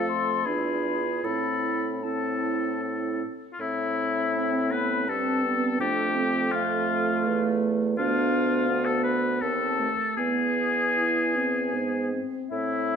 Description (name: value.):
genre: classical, slow romantic movement for wind quintet.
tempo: 74-85 BPM.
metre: 3/4.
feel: rubato.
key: A minor.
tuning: A4 = 440 Hz.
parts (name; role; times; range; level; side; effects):
silver concert flute; melody; 0.0-13.0 s; E5 to C6; -34 LUFS; left 9 dB; none.
warm oboe; second line; 0.0-13.0 s; E4 to B4; -28 LUFS; left 3 dB; none.
clear clarinet; accompaniment; 0.0-12.1 s; A3 to F4; -31 LUFS; right 7 dB; none.
dark French horn; accompaniment; 0.0-13.0 s; A3 to E4; -31 LUFS; left 1 dB; none.
mellow bassoon; bass; 0.0-13.0 s; D2 to A2; -30 LUFS; right 2 dB; none.
room: wet recital hall reverb, RT60 1.4 s.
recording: dark, warm production.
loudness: -23 LUFS.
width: side -7 dB against mid.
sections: 0.0-3.6 A section; 3.6-13.0 A section.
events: none.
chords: 0.4 E7b9; 1.2 Am; 5.8 F; 8.0 Bdim/D; 9.4 Adim/Eb; 10.2 E.